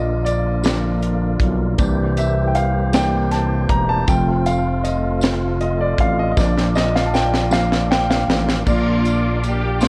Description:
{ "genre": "slow gospel", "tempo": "52 BPM (dotted quarters)", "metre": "6/8", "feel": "straight", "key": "Bb major", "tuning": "A4 = 440 Hz", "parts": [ { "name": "clear grand piano", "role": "accompaniment", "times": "0.0-9.9 s", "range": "Bb2 to Bb5", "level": "-23 LUFS", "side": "equal", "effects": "none" }, { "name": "mellow French horn section", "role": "sustained chords", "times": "0.0-8.6 s", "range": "D3 to F4", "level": "-31 LUFS", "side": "equal", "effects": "none" }, { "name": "tonewheel organ", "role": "sustained chords", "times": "0.0-9.9 s", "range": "D3 to D6", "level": "-30 LUFS", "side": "equal", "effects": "fast rotary speaker, chorus vibrato" }, { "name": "growling FM bass", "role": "bass", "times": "0.0-9.9 s", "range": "E1 to C2", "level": "-23 LUFS", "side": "equal", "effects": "tube saturation" }, { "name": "crisp fusion drum kit", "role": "drums", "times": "0.3-9.9 s", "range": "crash cymbal, hi-hat, kick drum, snare drum", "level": "-23 LUFS", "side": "equal", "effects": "none" }, { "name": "tambourine", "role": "percussion", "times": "0.3-9.9 s", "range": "none", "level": "-41 LUFS", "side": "equal", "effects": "none" }, { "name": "warm studio string section", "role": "melody", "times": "8.7-9.9 s", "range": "Bb3 to G4", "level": "-24 LUFS", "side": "equal", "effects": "none" } ], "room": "light reverb", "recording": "worn, warbling old tape, cassette tape, warbly pitch drift", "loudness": "-18 LUFS", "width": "mono", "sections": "0.0-8.7 A section; 8.7-9.9 B section", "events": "grand piano solo 0.0-8.7; drum fill 6.4-8.7", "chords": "0.0 Bb; 1.8 C7; 4.1 F; 6.4 Bb" }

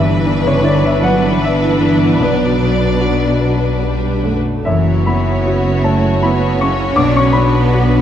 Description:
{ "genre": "cinematic, emotional film score for orchestra", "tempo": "47-54 BPM (dotted quarters)", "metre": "6/8", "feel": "rubato", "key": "B minor", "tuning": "A4 = 439 Hz", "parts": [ { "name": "rich studio violin section", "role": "melody", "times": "0.0-8.0 s", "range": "B4 to D5", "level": "-24 LUFS", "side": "left 3 dB", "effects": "none" }, { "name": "rich studio violin section", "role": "second line", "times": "0.0-8.0 s", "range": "D4 to C#5", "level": "-21 LUFS", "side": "left 4 dB", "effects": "none" }, { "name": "clear baby grand piano", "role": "accompaniment", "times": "0.0-8.0 s", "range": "B1 to D6", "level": "-18 LUFS", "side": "left 1 dB", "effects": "none" }, { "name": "rich studio viola section", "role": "accompaniment", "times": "0.0-8.0 s", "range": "E3 to E4", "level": "-22 LUFS", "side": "right 3 dB", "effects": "none" }, { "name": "concert harp", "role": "arpeggios", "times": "0.0-8.0 s", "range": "F#2 to F#5", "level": "-20 LUFS", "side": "left 6 dB", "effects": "none" }, { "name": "bright studio double bass section", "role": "bass", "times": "0.0-8.0 s", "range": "F#1 to B1", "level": "-19 LUFS", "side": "right 2 dB", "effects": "none" }, { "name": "rich studio cello section", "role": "bass", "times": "0.0-8.0 s", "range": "B2 to D4", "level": "-19 LUFS", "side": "right 4 dB", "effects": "none" } ], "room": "moderate concert hall reverb, RT60 2.0 s", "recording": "dark, warm production", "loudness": "-12 LUFS", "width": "side -10 dB against mid", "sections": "0.0-8.0 A section", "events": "none", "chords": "0.0 Em7/G; 2.2 Bm; 4.7 F#7sus4; 7.0 Bm" }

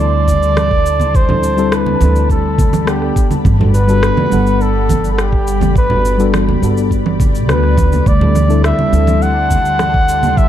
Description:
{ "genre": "sunset chillout", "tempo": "104 BPM", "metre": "4/4", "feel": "straight", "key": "G major", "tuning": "A4 = 440 Hz", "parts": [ { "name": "trumpet with bucket mute", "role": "melody", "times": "0.0-10.5 s", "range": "G4 to F#5", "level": "-17 LUFS", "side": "equal", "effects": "tape echo" }, { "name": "mellow FM electric piano", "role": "accompaniment", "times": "0.0-10.5 s", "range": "G3 to F#5", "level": "-19 LUFS", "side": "left 3 dB", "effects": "chorus, auto-pan" }, { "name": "ethereal airy pad", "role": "sustained chords", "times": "0.0-10.5 s", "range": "G3 to C6", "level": "-21 LUFS", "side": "right 1 dB", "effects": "ensemble chorus, built-in reverb" }, { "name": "upright bass", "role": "bass", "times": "0.0-10.5 s", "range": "G1 to D2", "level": "-15 LUFS", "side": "equal", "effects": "none" }, { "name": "electronic cabasa, rim click and congas", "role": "drums", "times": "0.3-10.5 s", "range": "none", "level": "-21 LUFS", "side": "right 3 dB", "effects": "none" }, { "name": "electronic kick drum", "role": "drums", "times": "0.3-10.5 s", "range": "none", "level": "-14 LUFS", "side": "equal", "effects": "none" }, { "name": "congas", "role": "percussion", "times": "0.3-10.3 s", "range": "none", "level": "-21 LUFS", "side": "right 2 dB", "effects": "none" } ], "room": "light reverb, small room ambience", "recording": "dark, warm production", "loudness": "-11 LUFS", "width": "side -11 dB against mid", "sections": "0.0-10.5 A section", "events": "none", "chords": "0.0 D7sus4; 3.2 Gmaj7; 8.1 D7sus4" }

